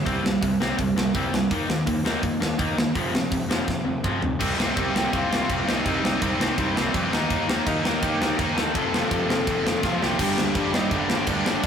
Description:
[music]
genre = punk rock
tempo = 166 BPM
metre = 4/4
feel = straight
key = unclear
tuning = A4 = 440 Hz
[part]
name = distorted electric guitar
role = riff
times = 0.0-11.7 s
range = F2 to Eb4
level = -27 LUFS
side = left 5 dB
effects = overdrive
[part]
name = distorted electric guitar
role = riff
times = 0.0-11.7 s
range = F2 to Eb4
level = -29 LUFS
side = right 7 dB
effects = distortion
[part]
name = fuzz picked electric bass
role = bass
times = 0.0-11.7 s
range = F1 to Bb2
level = -32 LUFS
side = right 1 dB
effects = overdrive
[part]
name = tight metal drum kit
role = drums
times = 0.1-11.7 s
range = crash cymbal, hi-hat, kick drum, snare drum, toms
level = -26 LUFS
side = equal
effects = none
[part]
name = scooped high-gain guitar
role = riff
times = 4.4-11.7 s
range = F2 to G4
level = -29 LUFS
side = right 1 dB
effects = distortion
[part]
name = lead guitar through a small cranked amp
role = melody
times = 4.8-11.7 s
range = C4 to Bb5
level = -29 LUFS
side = left 1 dB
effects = overdrive, ping-pong delay
[sound]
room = light reverb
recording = rough rehearsal-room recording, warm saturation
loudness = -21 LUFS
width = side -7 dB against mid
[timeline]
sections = 0.0-4.4 A section; 4.4-10.2 B section; 10.2-11.7 C section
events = drum fill 3.7-4.4, 9.8-10.2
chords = 0.1 C5; 1.5 Eb5; 3.0 F5; 4.4 Cm; 7.1 Eb; 8.8 F; 10.2 Gm

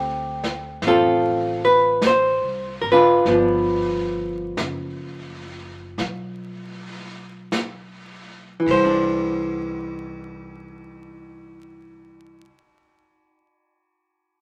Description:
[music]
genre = jazz ballad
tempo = 34-52 BPM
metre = 4/4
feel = swing 69% on 8ths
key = C major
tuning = A4 = 440 Hz
[part]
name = hollow-body jazz guitar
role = accompaniment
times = 0.0-12.7 s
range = D3 to C5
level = -21 LUFS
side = equal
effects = none
[part]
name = upright bass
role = bass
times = 0.0-12.4 s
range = F#1 to D2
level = -37 LUFS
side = equal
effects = none
[part]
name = vintage brush drum kit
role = drums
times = 0.4-8.9 s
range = brushed snare drum, hi-hat, kick drum, ride cymbal, snare drum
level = -34 LUFS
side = equal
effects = none
[sound]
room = wet studio reverb, RT60 0.8 s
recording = vinyl crackle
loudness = -21 LUFS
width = mono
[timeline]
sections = 0.0-9.2 A section; 9.2-14.4 B section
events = slowing down 0.0-9.2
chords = 0.0 Dm7; 3.3 G7; 8.3 Cadd9

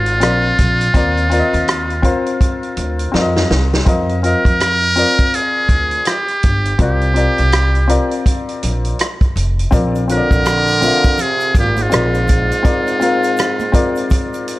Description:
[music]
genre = hip hop, jazz-hop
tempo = 82 BPM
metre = 4/4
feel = swing 61% on 16ths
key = F dorian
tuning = A4 = 445 Hz
[part]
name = trumpet with metal mute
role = melody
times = 0.0-14.6 s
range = F4 to Bb4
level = -18 LUFS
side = equal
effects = analog delay
[part]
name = warm baby grand piano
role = accompaniment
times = 0.0-14.6 s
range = C4 to F5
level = -19 LUFS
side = left 3 dB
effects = none
[part]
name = upright bass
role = bass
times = 0.0-12.5 s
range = F1 to F2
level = -17 LUFS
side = equal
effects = none
[part]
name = vintage drum kit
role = drums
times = 0.1-14.6 s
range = hi-hat, kick drum, rim click, snare drum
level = -17 LUFS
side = equal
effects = none
[part]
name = egg shaker and congas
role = percussion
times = 9.7-14.6 s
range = none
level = -31 LUFS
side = right 4 dB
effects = none
[part]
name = warm trombone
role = second line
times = 10.1-14.6 s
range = Ab2 to D3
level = -21 LUFS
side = right 3 dB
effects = analog delay
[sound]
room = small room reverb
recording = none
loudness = -12 LUFS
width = side -18 dB against mid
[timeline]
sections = 0.0-3.9 A section; 3.9-14.6 A section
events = drum fill 3.1-3.9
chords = 0.2 Bbadd9; 0.9 Ebsus2; 3.1 F7sus4; 3.9 Fm9; 6.8 Csus2; 9.7 Bb9; 12.6 Bb9/Ab

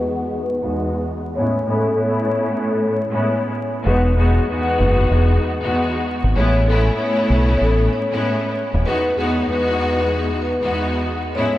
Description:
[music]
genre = hip hop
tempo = 96 BPM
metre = 4/4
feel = swing 61% on 16ths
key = E major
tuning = A4 = 441 Hz
[part]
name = vibraphone with medium mallets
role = melody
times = 0.0-11.6 s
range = G#4 to C#5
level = -22 LUFS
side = left 2 dB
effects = low-pass filter, tape echo
[part]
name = clear symphonic string section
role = accompaniment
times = 0.0-11.6 s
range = E2 to F#4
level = -20 LUFS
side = equal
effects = cassette tape, low-pass filter
[part]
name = deep dub fingered electric bass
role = bass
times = 3.9-8.8 s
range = D#1 to B1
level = -16 LUFS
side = equal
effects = none
[sound]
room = moderate huge ambient reverb, RT60 4.9 s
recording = dreamy mix soaked in reverb, vinyl crackle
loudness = -16 LUFS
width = side -15 dB against mid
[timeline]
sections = 0.0-8.9 A section; 8.9-11.6 B section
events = filter sweep 0.0-8.9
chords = 0.0 Emaj7; 1.4 Amaj7; 3.9 Emaj7; 6.4 Amaj7; 8.9 Emaj7

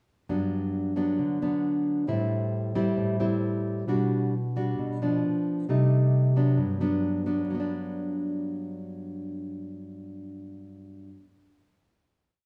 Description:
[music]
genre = bossa nova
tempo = 133 BPM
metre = 4/4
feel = straight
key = G major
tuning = A4 = 437 Hz
[part]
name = nylon-string guitar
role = solo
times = 0.3-11.2 s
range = G2 to F#4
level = -28 LUFS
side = equal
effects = none
[sound]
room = wet large studio reverb, RT60 1.2 s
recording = band playing live in one room, small room ambience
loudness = -27 LUFS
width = mono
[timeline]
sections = 0.3-7.5 A section; 7.5-11.1 final chord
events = none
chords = 0.3 Gmaj7; 2.1 Am7; 3.9 Gmaj7/B; 5.2 Bdim/F; 5.7 Cm6; 6.6 Gmaj7

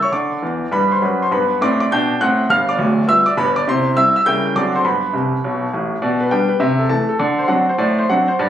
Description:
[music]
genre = jazz, stride piano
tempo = 204 BPM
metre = 4/4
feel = swing 64% on 8ths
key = G major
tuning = A4 = 440 Hz
[part]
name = bright concert grand piano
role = solo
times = 0.0-8.5 s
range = D1 to G6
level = -14 LUFS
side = equal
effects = none
[sound]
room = light reverb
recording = recorded on a phone in the room, club reverb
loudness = -14 LUFS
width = side -10 dB against mid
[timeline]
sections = 0.0-6.0 A section; 6.0-8.5 B section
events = grand piano fill 0.4-1.3, 5.1-6.0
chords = 0.1 Dsus2; 0.7 Gmaj7; 1.3 G; 2.5 G7; 3.7 C; 4.2 C#dim7; 4.5 D7; 4.8 G; 6.0 G/B; 6.6 Am/C; 7.2 D7

